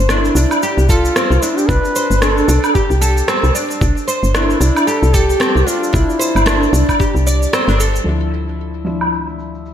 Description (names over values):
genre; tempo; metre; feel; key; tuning
organic downtempo; 113 BPM; 4/4; swing 58% on 16ths; unclear; A4 = 438 Hz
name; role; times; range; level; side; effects
oud; arpeggios; 0.0-7.9 s; C4 to D5; -18 LUFS; right 1 dB; ping-pong delay, slapback echo
woody FM bass; bass; 0.0-9.7 s; G1 to D2; -15 LUFS; equal; sidechain pumping
mellow duduk; melody; 0.1-7.0 s; E4 to B4; -20 LUFS; equal; ping-pong delay
electronic rim click, shaker and woodblock; drums; 0.1-9.7 s; none; -19 LUFS; equal; overdrive, low-pass filter on perc, low-pass filter on snare, low-pass filter on room
electronic kick drum; drums; 0.9-7.1 s; none; -17 LUFS; equal; none
felt-muted upright piano; accompaniment; 8.0-9.7 s; F3 to E4; -22 LUFS; left 3 dB; sidechain pumping, low-pass filter, ping-pong delay
room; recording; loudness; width
moderate lush hall reverb, RT60 1.9 s; big arena sound; -12 LUFS; side -10 dB against mid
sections
0.0-8.1 A section; 8.1-9.7 B section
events
filter sweep on drum 8.1-9.7; filter sweep on felt piano 8.1-9.7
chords
0.0 C; 8.1 Dmadd9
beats
0.10 0.63 1.16 | 1.69 2.22 2.75 3.28 | 3.81 4.34 4.87 5.41 | 5.94 6.47 7.00 7.53 | 8.06 8.59 9.12 9.65